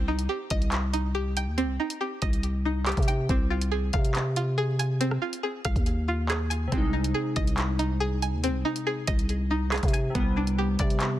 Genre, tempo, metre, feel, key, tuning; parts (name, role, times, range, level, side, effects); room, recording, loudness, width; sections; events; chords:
hip hop, drill; 140 BPM; 4/4; half-time; C harmonic minor; A4 = 440 Hz
string-like resonator pluck; arpeggios; 0.0-11.2 s; B3 to Ab5; -30 LUFS; right 1 dB; chorus, phaser, low-pass filter, digital delay
growling 808-style bass; bass; 0.0-11.2 s; C2 to C3; -27 LUFS; equal
drill drum kit; drums; 0.2-11.1 s; handclaps, hi-hat, kick drum, rim click; -28 LUFS; equal
glassy digital keys; accompaniment; 6.7-11.2 s; C3 to Eb4; -32 LUFS; left 1 dB; chorus, low-pass filter
little or no reverb; dense, heavily limited modern master; -24 LUFS; side -13 dB against mid
0.0-11.2 A section
0.0 Cm; 3.3 Fm/C; 6.7 Ab/C; 10.2 G/C